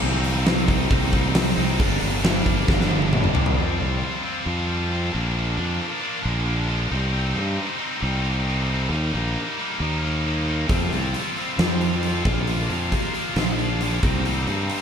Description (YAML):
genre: quiet-loud alternative rock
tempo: 135 BPM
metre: 4/4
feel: straight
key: C minor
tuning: A4 = 439 Hz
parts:
  - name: scooped high-gain guitar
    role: riff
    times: 0.0-14.8 s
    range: G2 to F4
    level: -25 LUFS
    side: left 1 dB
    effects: distortion
  - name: fuzz fingered electric bass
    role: bass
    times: 0.0-14.7 s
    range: G1 to G2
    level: -24 LUFS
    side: equal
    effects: overdrive
  - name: big rock drum kit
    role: drums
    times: 0.2-3.6, 10.7-14.8 s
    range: hi-hat, kick drum, snare drum, toms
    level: -22 LUFS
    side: equal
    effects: none
room: light reverb, small room ambience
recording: none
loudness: -20 LUFS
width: side -7 dB against mid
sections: 0.0-3.6 A section; 3.6-14.8 B section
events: drum fill 2.7-3.6; half time 3.6-14.8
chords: 0.0 Cm; 1.8 Gm; 3.6 Fsus2; 5.1 Bb; 6.9 Cm; 8.9 Eb; 10.7 Fsus2; 12.3 Bb; 14.0 Cm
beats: | 0.03 0.47 0.91 1.36 | 1.80 2.24 2.69 3.13 | 3.58 4.02 4.47 4.91 | 5.36 5.80 6.25 6.69 | 7.14 7.58 8.03 8.47 | 8.92 9.36 9.81 10.26 | 10.70 11.14 11.59 12.04 | 12.48 12.93 13.37 13.82 | 14.26 14.71